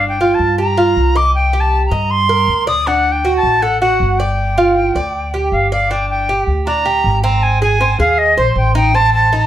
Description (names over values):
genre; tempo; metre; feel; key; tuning
latin, Cuban son and guajira; 158 BPM; 4/4; straight; G minor; A4 = 440 Hz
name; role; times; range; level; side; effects
bright reedy jazz flute; melody; 0.0-9.5 s; C5 to Eb6; -15 LUFS; equal; none
Cuban tres; arpeggios; 0.0-9.5 s; C4 to Eb5; -17 LUFS; right 3 dB; none
upright bass; bass; 0.0-9.5 s; G1 to G2; -18 LUFS; left 1 dB; none
room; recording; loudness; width
moderate studio ambience, RT60 0.5 s; heard from further back in the room; -12 LUFS; side -11 dB against mid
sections
0.0-5.9 A section; 5.9-9.5 B section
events
none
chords
0.0 Gm7; 1.3 Cm7; 2.9 D; 4.4 G5; 5.9 Gm; 7.4 Ab; 8.9 Adim